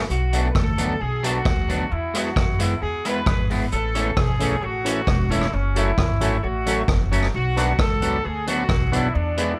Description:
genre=ska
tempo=133 BPM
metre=4/4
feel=straight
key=unclear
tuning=A4 = 445 Hz
part: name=electric guitar at the edge of break-up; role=accompaniment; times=0.0-9.5 s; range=E3 to E4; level=-30 LUFS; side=equal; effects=dub echo
part: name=upright bass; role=bass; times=0.0-9.5 s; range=E1 to F#2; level=-27 LUFS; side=equal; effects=none
part: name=bright horn section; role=melody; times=0.1-9.6 s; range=C#4 to B4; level=-29 LUFS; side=equal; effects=dub echo
part: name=street-band drum kit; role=drums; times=0.1-9.5 s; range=hi-hat, kick drum, rim click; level=-26 LUFS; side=equal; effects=none
part: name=overdriven tonewheel organ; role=stabs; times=3.9-9.5 s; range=B3 to C#5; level=-31 LUFS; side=equal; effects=slow rotary speaker, dub echo
room=little or no reverb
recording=none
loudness=-22 LUFS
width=mono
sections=0.0-9.6 A section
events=none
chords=0.1 Bm; 1.9 E; 3.7 A; 5.5 F#m; 7.3 Bm

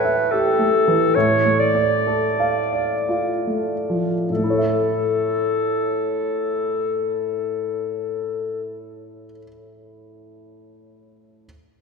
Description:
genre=classical, romantic movement for piano and orchestra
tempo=47-75 BPM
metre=3/4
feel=rubato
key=A major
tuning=A4 = 439 Hz
part: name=warm grand piano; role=melody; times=0.0-11.5 s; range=A2 to G5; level=-22 LUFS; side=right 2 dB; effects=none
part: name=bright clarinet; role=second line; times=0.0-8.6 s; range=A4 to D5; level=-21 LUFS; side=left 2 dB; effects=none
room=wet concert hall reverb, RT60 2.0 s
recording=heard from further back in the room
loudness=-18 LUFS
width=side -5 dB against mid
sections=0.0-4.3 A section; 4.3-7.9 B section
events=slowing down 0.0-4.3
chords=0.0 A7(no3); 1.1 Dm/A; 4.3 A

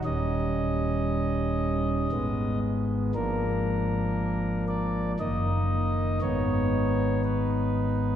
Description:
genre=classical, chorale-style piece for pipe organ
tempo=58 BPM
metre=3/4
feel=straight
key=unclear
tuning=A4 = 440 Hz
part: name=chamber organ, principal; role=solo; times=0.0-8.2 s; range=Eb1 to Eb5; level=-24 LUFS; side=equal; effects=none
room=wet church reverb, RT60 2.6 s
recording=heard from further back in the room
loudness=-24 LUFS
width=side -10 dB against mid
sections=0.0-8.2 A section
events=none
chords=0.0 Eb7; 2.1 Abm; 3.1 Bb7/Ab; 5.2 Ebm/Gb; 6.2 Abm

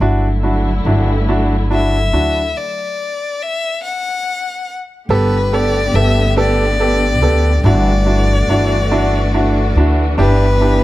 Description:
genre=six-eight pop ballad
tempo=47 BPM (dotted quarters)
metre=6/8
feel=straight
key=G major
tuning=A4 = 439 Hz
part: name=clear concert grand piano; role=accompaniment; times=0.0-10.8 s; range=B3 to A4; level=-18 LUFS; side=right 2 dB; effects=none
part: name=muted studio string section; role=sustained chords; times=0.0-10.8 s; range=D3 to G4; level=-22 LUFS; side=equal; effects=none
part: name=upright bass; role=bass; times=0.0-10.8 s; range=G1 to D2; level=-15 LUFS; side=equal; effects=none
part: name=rich violin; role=melody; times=1.7-10.8 s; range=B4 to F#5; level=-19 LUFS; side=left 3 dB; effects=none
room=small room ambience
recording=none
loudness=-13 LUFS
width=side -16 dB against mid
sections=0.0-5.1 A section; 5.1-10.8 B section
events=stop 2.5-5.1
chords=0.0 Dadd9/G; 5.1 Gadd9; 7.6 Dadd9/G; 10.2 Em7/G

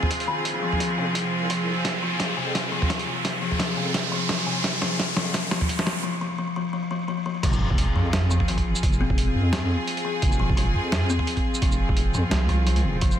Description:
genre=half-time drum and bass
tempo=172 BPM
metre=4/4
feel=swing 55% on 16ths, half-time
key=F minor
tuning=A4 = 440 Hz
part: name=clear studio string section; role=sustained chords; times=0.0-13.2 s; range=F3 to C5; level=-29 LUFS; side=equal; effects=sidechain pumping
part: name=buzzing kalimba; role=arpeggios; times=0.0-13.1 s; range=C3 to C4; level=-29 LUFS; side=left 4 dB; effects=low-pass filter, digital delay
part: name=boom bap sampler-style drum kit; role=drums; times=0.0-13.2 s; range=crash cymbal, hi-hat, shaker, snare drum, toms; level=-28 LUFS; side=right 1 dB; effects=none
part: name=riser and sub drop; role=sound effects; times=0.0-8.8 s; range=none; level=-29 LUFS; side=right 1 dB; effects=none
part: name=electronic kick drum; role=drums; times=0.1-13.1 s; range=none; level=-24 LUFS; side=right 1 dB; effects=high-pass filter on kick, high-pass filter on room
part: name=deep soft wobble bass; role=bass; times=0.5-13.2 s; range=Eb1 to F2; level=-25 LUFS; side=right 1 dB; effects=chorus, high-pass filter
room=light reverb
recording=none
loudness=-21 LUFS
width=side -10 dB against mid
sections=0.0-7.4 A section; 7.4-13.2 B section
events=build-up 0.0-7.4; riser 0.0-6.0; drum fill 1.9-6.0; break 6.0-7.4; drop 7.4-13.2; impact 7.4-8.8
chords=0.0 Fm

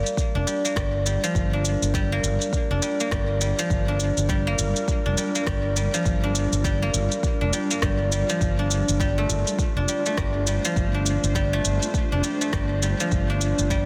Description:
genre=organic downtempo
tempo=102 BPM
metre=4/4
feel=swing 60% on 16ths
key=G minor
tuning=A4 = 435 Hz
part: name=granular cloud pad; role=sustained chords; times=1.2-13.9 s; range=G3 to C5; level=-35 LUFS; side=equal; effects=built-in reverb, sidechain pumping
part: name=guzheng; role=arpeggios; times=0.0-13.9 s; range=F3 to D4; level=-28 LUFS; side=equal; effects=digital delay
part: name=electronic shaker and rim click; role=drums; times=0.1-13.8 s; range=none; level=-32 LUFS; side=equal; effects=soft clipping on snare
part: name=electronic kick drum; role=drums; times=0.2-13.8 s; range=none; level=-29 LUFS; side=equal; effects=none
part: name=fretless electric bass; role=bass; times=0.3-13.9 s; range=F1 to G1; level=-27 LUFS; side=equal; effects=sidechain pumping
room=light reverb, digital ambience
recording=dense, heavily limited modern master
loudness=-23 LUFS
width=mono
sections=0.0-13.9 A section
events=none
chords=0.0 Gm7; 9.0 Dm7

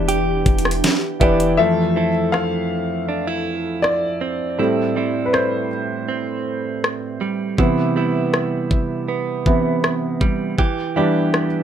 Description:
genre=contemporary R&B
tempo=80 BPM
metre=4/4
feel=straight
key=unclear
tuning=A4 = 440 Hz
part: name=hollow clarinet-like synth lead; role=melody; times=0.0-0.8 s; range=D5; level=-33 LUFS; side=left 2 dB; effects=chorus, plate reverb, tape echo
part: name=warm concert grand piano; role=accompaniment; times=0.0-11.6 s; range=F2 to F5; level=-20 LUFS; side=equal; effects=none
part: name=glassy FM pad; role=sustained chords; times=0.0-1.6 s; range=E3 to B4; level=-26 LUFS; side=equal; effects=ensemble chorus, built-in reverb, phaser
part: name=direct-recorded clean electric guitar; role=arpeggios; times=0.0-11.6 s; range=A2 to A4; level=-23 LUFS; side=right 6 dB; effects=none
part: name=clean 808-style bass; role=bass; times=0.0-1.6 s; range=E1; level=-24 LUFS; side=equal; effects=none
part: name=smooth R&B drum kit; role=drums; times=0.1-11.5 s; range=hi-hat, kick drum, rim click, snare drum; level=-19 LUFS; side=left 1 dB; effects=none
room=light reverb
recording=none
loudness=-17 LUFS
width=side -9 dB against mid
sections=0.0-1.6 A section; 1.6-11.6 B section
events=grand piano solo 1.6-11.6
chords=0.0 Em7; 1.6 Fmaj7; 4.6 Am7; 7.6 Cmaj7; 10.6 Em7

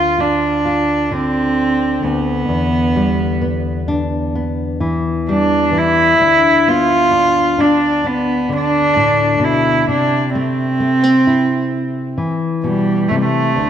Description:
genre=acoustic folk-pop ballad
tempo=65 BPM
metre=4/4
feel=straight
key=unclear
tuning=A4 = 440 Hz
part: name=dark cello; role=melody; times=0.0-13.7 s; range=G3 to F4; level=-14 LUFS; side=right 1 dB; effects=none
part: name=nylon-string guitar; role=accompaniment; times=0.0-13.7 s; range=D2 to F4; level=-18 LUFS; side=left 2 dB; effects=none
room=wet concert hall reverb, RT60 2.1 s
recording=none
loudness=-13 LUFS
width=side -9 dB against mid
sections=0.0-13.7 A section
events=none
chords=0.0 Dm; 2.5 Em7; 6.2 G7/D; 9.9 C6

